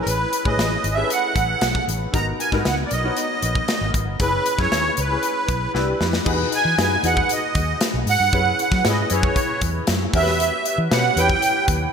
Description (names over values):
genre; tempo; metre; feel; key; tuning
polished 1980s jazz-funk pop; 116 BPM; 4/4; straight; unclear; A4 = 440 Hz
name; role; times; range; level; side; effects
musette accordion; melody; 0.0-11.7 s; A#4 to A#5; -22 LUFS; right 3 dB; digital delay
clear grand piano; accompaniment; 0.0-11.9 s; B3 to C#5; -25 LUFS; left 2 dB; ensemble chorus
vintage muted fingered electric bass; bass; 0.0-11.9 s; F#1 to F#3; -24 LUFS; equal; none
modern studio drum kit; drums; 0.1-11.8 s; crash cymbal, hi-hat, kick drum, snare drum; -24 LUFS; left 1 dB; gated reverb
room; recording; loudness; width
moderate plate reverb, RT60 2.5 s; bright 1980s-style digital production; -18 LUFS; side -6 dB against mid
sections
0.0-6.3 A section; 6.3-11.9 B section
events
drum fill 5.8-6.3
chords
0.0 Amaj9; 2.1 G#m9; 4.2 F#7sus4; 5.8 Cmaj9; 6.3 Emaj9; 8.3 F#9sus4; 10.1 Em6